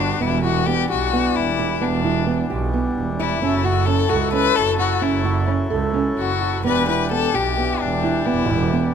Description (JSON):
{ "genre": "contemporary instrumental, chamber music in an uneven meter", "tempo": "261 BPM (eighths)", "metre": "7/8", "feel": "straight", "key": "unclear", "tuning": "A4 = 440 Hz", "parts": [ { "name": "warm violin", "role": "melody", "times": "0.0-8.9 s", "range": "D4 to B4", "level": "-22 LUFS", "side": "left 11 dB", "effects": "none" }, { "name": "hand-pumped harmonium", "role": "sustained chords", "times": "0.0-8.9 s", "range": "E3 to B4", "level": "-26 LUFS", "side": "left 2 dB", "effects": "none" }, { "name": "nylon-string guitar", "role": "arpeggios", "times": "0.0-8.9 s", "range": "B3 to A4", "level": "-23 LUFS", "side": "right 4 dB", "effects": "none" }, { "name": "clear double bass", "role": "bass", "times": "0.0-8.9 s", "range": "E1 to C#2", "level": "-23 LUFS", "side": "right 4 dB", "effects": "none" } ], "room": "moderate recital hall reverb, RT60 1.3 s", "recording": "close, detailed microphones", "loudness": "-17 LUFS", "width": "side -7 dB against mid", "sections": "0.2-8.9 A section", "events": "none", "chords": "0.2 Em7; 3.4 F#m7; 6.6 Em7" }